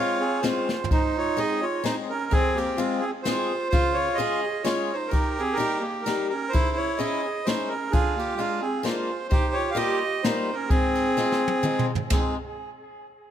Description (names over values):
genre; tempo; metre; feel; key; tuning
musette waltz; 129 BPM; 3/4; swing 54% on 8ths; Ab major; A4 = 440 Hz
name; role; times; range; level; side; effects
accordion; melody; 0.0-12.3 s; C4 to F5; -26 LUFS; right 2 dB; tape echo
bright clarinet; second line; 0.0-12.3 s; Ab3 to Ab4; -32 LUFS; right 2 dB; none
picked swing-style acoustic guitar; accompaniment; 0.0-12.4 s; F2 to Ab4; -31 LUFS; left 6 dB; none
jazz brush drum kit; drums; 0.4-12.2 s; hi-hat, kick drum, ride cymbal, snare drum, toms; -26 LUFS; equal; none
room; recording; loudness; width
light reverb; close, detailed microphones; -22 LUFS; side -10 dB against mid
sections
0.9-12.1 A section; 12.1-13.3 B section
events
drum fill 0.7, 11.2-12.1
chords
0.0 Dbmaj7; 0.9 Ab; 2.3 Fm; 3.7 Db; 5.1 Eb; 6.5 Dbmadd9; 7.9 Bb7/D; 9.3 Ebadd9; 10.7 Ab6